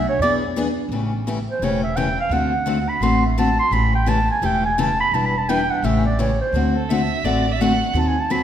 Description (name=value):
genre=acoustic string swing (jazz manouche)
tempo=170 BPM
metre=4/4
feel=swing 61% on 8ths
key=A mixolydian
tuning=A4 = 440 Hz
part: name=breathy clarinet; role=melody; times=0.0-8.4 s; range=C5 to C6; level=-21 LUFS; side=right 2 dB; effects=none
part: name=upright bass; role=bass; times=0.0-8.4 s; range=E1 to E2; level=-24 LUFS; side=equal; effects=none
part: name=picked steel-string acoustic guitar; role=accompaniment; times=0.2-8.4 s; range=C#3 to B4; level=-21 LUFS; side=left 2 dB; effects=none
part: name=warm violin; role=second line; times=6.7-7.9 s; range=A4 to F#5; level=-25 LUFS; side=right 5 dB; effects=none
room=wet scoring stage reverb, RT60 1.6 s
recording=recorded in a church or concert hall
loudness=-17 LUFS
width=side -10 dB against mid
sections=0.9-8.4 A section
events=clarinet solo 0.0-8.4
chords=0.2 E7; 0.9 A7; 2.3 D7; 3.7 A7; 5.1 Em7; 5.8 A7; 6.5 D7